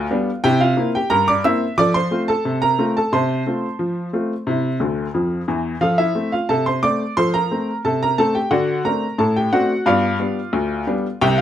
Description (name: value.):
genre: ragtime piano.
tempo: 89 BPM.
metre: 2/4.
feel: straight.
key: F major.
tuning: A4 = 440 Hz.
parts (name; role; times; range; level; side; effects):
bright upright piano; solo; 0.0-11.4 s; C2 to E6; -17 LUFS; equal; none.
room: light reverb.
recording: dark, warm production.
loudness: -17 LUFS.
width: side -10 dB against mid.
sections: 0.0-11.4 A section.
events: upright piano fill 4.8-5.8.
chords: 0.4 C7; 1.8 F; 3.1 F/C; 4.5 C; 5.8 F; 8.5 D7; 9.9 G7.